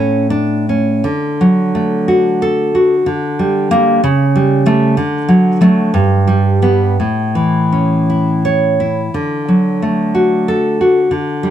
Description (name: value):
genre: romantic piece for solo classical guitar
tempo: 53-64 BPM (dotted quarters)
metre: 6/8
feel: rubato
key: D major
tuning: A4 = 441 Hz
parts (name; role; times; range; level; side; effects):
- nylon-string guitar; solo; 0.0-11.5 s; G2 to C#5; -11 LUFS; equal; none
room: light reverb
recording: dark, warm production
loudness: -11 LUFS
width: side -10 dB against mid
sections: 0.0-1.1 A section; 1.1-11.5 B section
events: none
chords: 0.0 A; 1.1 D; 3.1 Gm/D; 4.0 A7/C#; 5.0 D; 6.0 G; 7.0 A; 9.1 D